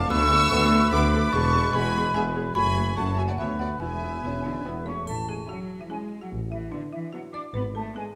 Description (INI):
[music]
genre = cinematic, playful, whimsical film cue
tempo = 146 BPM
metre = 3/4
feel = straight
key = A major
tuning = A4 = 444 Hz
[part]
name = folk marimba with medium hard mallets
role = melody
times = 0.0-8.2 s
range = D4 to E6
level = -37 LUFS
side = equal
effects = none
[part]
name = rich studio violin section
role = melody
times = 0.0-8.2 s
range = E4 to E6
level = -35 LUFS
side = equal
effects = none
[part]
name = dark clarinet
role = second line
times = 0.0-4.9 s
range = G#3 to B3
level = -37 LUFS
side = equal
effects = none
[part]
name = mellow hollow flute section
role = second line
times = 0.0-8.0 s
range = D5 to E6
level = -31 LUFS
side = equal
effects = none
[part]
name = mellow oboe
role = second line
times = 0.0-4.8 s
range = B4 to C#5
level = -32 LUFS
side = equal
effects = none
[part]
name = warm studio violin section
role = second line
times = 0.0-8.2 s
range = D4 to C#6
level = -36 LUFS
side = equal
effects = none
[part]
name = mellow tuba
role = bass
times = 0.0-7.9 s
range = E1 to D2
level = -34 LUFS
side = equal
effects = none
[part]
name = rich studio double bass section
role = bass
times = 0.0-7.9 s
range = E1 to D2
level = -33 LUFS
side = equal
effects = none
[part]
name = warm studio cello section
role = bass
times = 0.0-8.0 s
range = D2 to D4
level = -34 LUFS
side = equal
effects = none
[part]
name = dark studio viola section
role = accompaniment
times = 0.1-8.2 s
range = A3 to A4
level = -37 LUFS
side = equal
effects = none
[part]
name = mellow French horn section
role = sustained chords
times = 0.5-5.1 s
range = G#3 to C#4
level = -39 LUFS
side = equal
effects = none
[part]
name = triangle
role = percussion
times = 5.1-5.9 s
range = none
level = -50 LUFS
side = equal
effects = none
[sound]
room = moderate scoring stage reverb, RT60 1.7 s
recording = none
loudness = -25 LUFS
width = mono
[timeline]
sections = 0.0-5.1 A section; 5.1-8.2 B section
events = none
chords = 0.1 Bm7/D; 1.3 E; 2.6 F#m; 3.4 Bm7/D; 3.8 E; 5.1 A; 6.3 Bm7/A; 7.5 E7/G#